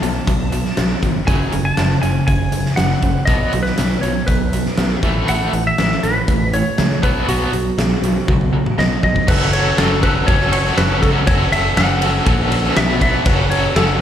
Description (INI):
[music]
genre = classic rock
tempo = 120 BPM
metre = 4/4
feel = straight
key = F# minor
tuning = A4 = 441 Hz
[part]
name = clean lap steel guitar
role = melody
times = 0.0-13.8 s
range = F#4 to A5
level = -22 LUFS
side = equal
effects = slapback echo
[part]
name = overdriven electric guitar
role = riff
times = 0.0-14.0 s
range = F#2 to A4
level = -20 LUFS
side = equal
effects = tremolo, slapback echo
[part]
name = growling fingered electric bass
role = bass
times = 0.0-14.0 s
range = F#1 to C#2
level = -20 LUFS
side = equal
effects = overdrive
[part]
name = big rock drum kit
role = drums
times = 0.0-13.9 s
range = crash cymbal, hi-hat, kick drum, ride cymbal, snare drum, toms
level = -19 LUFS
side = equal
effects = none
[sound]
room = small room ambience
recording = live gig heard through the venue's PA, club reverb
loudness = -14 LUFS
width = side -10 dB against mid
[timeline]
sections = 0.0-9.3 A section; 9.3-14.0 B section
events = drum fill 8.3-9.3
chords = 0.0 B5; 1.3 F#sus2; 3.3 B5; 5.0 A; 7.0 B5; 9.3 F#m; 12.8 B5; 13.3 F#m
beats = 0.27 0.78 | 1.28 1.78 2.28 2.78 | 3.28 3.78 4.28 4.78 | 5.28 5.78 6.28 6.78 | 7.28 7.78 8.28 8.78 | 9.28 9.78 10.28 10.78 | 11.27 11.77 12.27 12.77 | 13.26 13.76